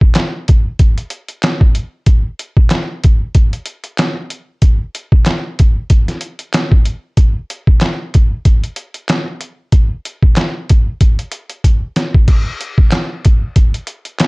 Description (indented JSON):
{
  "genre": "hip hop",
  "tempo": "94 BPM",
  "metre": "4/4",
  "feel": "swing 57% on 16ths",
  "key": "none",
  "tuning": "none",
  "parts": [
    { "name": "trip hop sampler-style drum kit", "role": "drums", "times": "0.0-14.3 s", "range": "crash cymbal, handclaps, hi-hat, kick drum, snare drum", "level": "-11 LUFS", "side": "equal", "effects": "none" }
  ],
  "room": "light reverb",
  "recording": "dark, warm production",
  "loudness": "-12 LUFS",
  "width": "side -29 dB against mid",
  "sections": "0.0-12.3 A section; 12.3-14.3 B section",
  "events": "drum fill 11.6-12.3",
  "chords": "none"
}